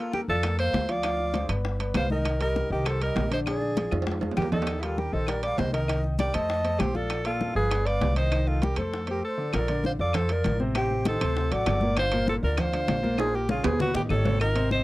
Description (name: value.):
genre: Afro-Cuban jazz.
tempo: 198 BPM.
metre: 4/4.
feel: straight.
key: Bb major.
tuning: A4 = 441 Hz.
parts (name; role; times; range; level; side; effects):
bright alto saxophone; melody; 0.0-14.8 s; E4 to Eb5; -29 LUFS; equal; none.
breathy jazz flute; second line; 0.0-14.8 s; G4 to A5; -35 LUFS; right 3 dB; none.
warm grand piano; accompaniment; 0.0-14.8 s; Bb2 to F5; -32 LUFS; left 1 dB; none.
bongos; percussion; 0.1-14.8 s; none; -35 LUFS; left 4 dB; none.
congas; percussion; 0.1-14.8 s; none; -33 LUFS; left 1 dB; none.
timbales; percussion; 0.1-14.7 s; none; -34 LUFS; right 5 dB; none.
upright bass; bass; 0.3-14.8 s; G1 to F2; -28 LUFS; equal; none.
claves; percussion; 0.4-14.6 s; none; -39 LUFS; left 6 dB; none.
room: light reverb.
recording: dry, close 1970s-style studio recording.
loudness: -24 LUFS.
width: side -18 dB against mid.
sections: 0.0-9.5 A section; 9.5-14.8 B section.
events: drum fill 3.9-4.7, 13.2-14.4.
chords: 0.0 Bbmaj7; 1.0 Dm7b5; 1.6 G; 2.3 Cm7; 3.5 Bb7; 4.7 Eb; 5.9 Cm7; 6.5 F7; 7.1 Bbmaj7; 7.7 G7; 8.3 Cm7; 8.9 F; 9.5 Bbmaj9; 10.8 Am7b5; 11.4 D7; 12.0 Gm7; 13.2 Bbm; 13.8 Ebaug7.